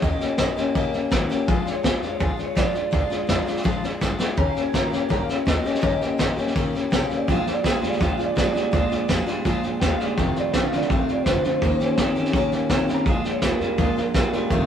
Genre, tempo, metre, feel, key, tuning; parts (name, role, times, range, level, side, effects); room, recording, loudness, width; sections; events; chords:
rockabilly; 166 BPM; 4/4; straight; Bb mixolydian; A4 = 441 Hz
electric guitar through a small old amp; melody; 0.0-14.6 s; Bb4 to Bb5; -28 LUFS; right 2 dB; harmonic tremolo
picked steel-string acoustic guitar; accompaniment; 0.0-14.7 s; F2 to G4; -26 LUFS; left 4 dB
upright bass; bass; 0.0-14.6 s; F1 to Eb3; -28 LUFS; equal
vintage brush drum kit; drums; 0.0-14.6 s; hi-hat, kick drum, snare drum; -24 LUFS; equal
electric guitar through a small old amp; riff; 7.3-14.7 s; F2 to C4; -26 LUFS; right 3 dB; spring reverb
light reverb; rough rehearsal-room recording; -20 LUFS; side -8 dB against mid
0.0-14.7 A section
clean electric guitar solo 0.0-14.7; drum fill 4.0-4.4
0.0 Eb7; 1.5 Bb7; 4.4 Eb7; 7.3 Bb7; 10.2 F7; 11.6 Eb7; 13.1 Bb7